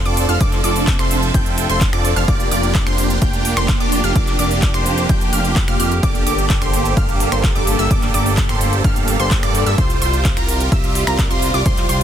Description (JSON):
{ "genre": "EDM, festival progressive house", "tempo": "128 BPM", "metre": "4/4", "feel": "straight", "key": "F major", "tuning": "A4 = 439 Hz", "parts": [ { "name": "warm studio string section", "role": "sustained chords", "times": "0.0-12.0 s", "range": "C3 to E5", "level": "-26 LUFS", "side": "right 3 dB", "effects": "sidechain pumping" }, { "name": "wide unison pluck", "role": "arpeggios", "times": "0.0-12.0 s", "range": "Bb5 to G6", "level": "-25 LUFS", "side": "equal", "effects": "sidechain pumping, tape echo" }, { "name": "supersaw chords", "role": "riff", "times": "0.0-12.0 s", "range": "Bb3 to G5", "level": "-20 LUFS", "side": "right 1 dB", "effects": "phaser, sidechain pumping, tape echo" }, { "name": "fat analog bass", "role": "bass", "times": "0.0-12.0 s", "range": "F1 to G2", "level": "-21 LUFS", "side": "equal", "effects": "sidechain pumping" }, { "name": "pop drum kit", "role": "drums", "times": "0.1-12.0 s", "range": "finger snaps, handclaps, hi-hat", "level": "-25 LUFS", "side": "right 1 dB", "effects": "none" }, { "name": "electronic kick drum", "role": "drums", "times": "0.4-11.8 s", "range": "none", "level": "-18 LUFS", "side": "equal", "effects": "none" } ], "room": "little or no reverb", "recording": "dense, heavily limited modern master", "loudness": "-14 LUFS", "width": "side -10 dB against mid", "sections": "0.0-12.0 A section", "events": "none", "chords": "0.0 F6; 2.3 Bb6/F; 6.0 Gmadd9; 9.8 Csus4", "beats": "| 0.41 0.88 1.34 1.81 | 2.28 2.75 3.22 3.69 | 4.16 4.62 5.09 5.56 | 6.03 6.50 6.97 7.44 | 7.91 8.38 8.84 9.31 | 9.78 10.25 10.72 11.19 | 11.66" }